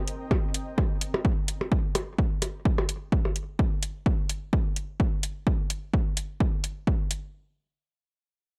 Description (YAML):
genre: minimal techno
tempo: 128 BPM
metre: 4/4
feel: swing 55% on 16ths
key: none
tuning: none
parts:
  - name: electronic hi-hat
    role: drums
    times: 0.1-7.2 s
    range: none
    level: -33 LUFS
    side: equal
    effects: none
  - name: electronic kick drum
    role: drums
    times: 0.3-7.0 s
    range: none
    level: -28 LUFS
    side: equal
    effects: overdrive
  - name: percussion blips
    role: percussion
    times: 0.3-3.3 s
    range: none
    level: -34 LUFS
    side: equal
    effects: overdrive
room: little or no reverb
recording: dry, gritty hardware recording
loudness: -28 LUFS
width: mono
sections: 0.0-7.3 A section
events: none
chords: none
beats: 0.31 0.78 1.25 | 1.72 2.19 2.65 3.12 | 3.59 4.06 4.53 5.00 | 5.47 5.93 6.40 6.87